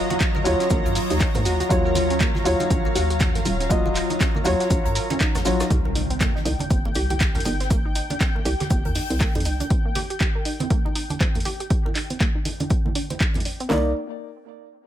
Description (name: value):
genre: deep house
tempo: 120 BPM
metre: 4/4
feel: swing 60% on 16ths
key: unclear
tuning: A4 = 436 Hz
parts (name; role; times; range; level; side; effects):
- soft string machine; sustained chords; 0.0-5.7 s; Gb3 to F5; -29 LUFS; equal; ensemble chorus, sidechain pumping
- felt-muted upright piano; stabs; 0.0-5.6, 13.7-13.9 s; Gb3 to Eb5; -25 LUFS; left 1 dB; ping-pong delay
- analog string pad; texture; 0.0-13.7 s; G5 to Bb5; -35 LUFS; left 1 dB; ensemble chorus, sidechain pumping
- analog pluck; arpeggios; 0.1-13.9 s; Bb3 to C5; -31 LUFS; right 3 dB; chorus, sidechain pumping, ping-pong delay
- punchy analog drum machine; drums; 0.1-13.7 s; handclaps, hi-hat, rim click, shaker; -29 LUFS; equal; none
- congas; percussion; 0.1-13.4 s; none; -32 LUFS; right 3 dB; none
- deep house drum kit; drums; 0.2-13.8 s; handclaps, kick drum, snare drum; -23 LUFS; equal; overdrive
- modern studio drum kit; drums; 0.2-9.7 s; hi-hat, shaker, snare drum; -37 LUFS; left 2 dB; high-pass filter on hats, high-pass filter on snare, high-pass filter on perc, high-pass filter on room
- hollow knocking FM bass; bass; 0.5-9.6, 13.7-13.9 s; Eb1 to Ab2; -26 LUFS; equal; sidechain pumping
- impact; sound effects; 5.7-7.7 s; none; -32 LUFS; left 1 dB; none
room: small room reverb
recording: none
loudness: -20 LUFS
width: side -11 dB against mid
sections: 0.0-5.7 A section; 5.7-13.7 B section; 13.7-14.9 C section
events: drop 0.0-5.7; drum fill 5.2-5.7; impact 5.7-7.7; filter sweep on synth arpeggio sound 5.7-13.7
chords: 0.0 Ebm9; 5.7 Cm7; 13.7 Cm9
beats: 0.20 0.70 1.20 | 1.70 2.20 2.70 3.20 | 3.70 4.20 4.70 5.20 | 5.70 6.20 6.70 7.20 | 7.70 8.20 8.70 9.20 | 9.70 10.20 10.70 11.20 | 11.70 12.20 12.70 13.20 | 13.70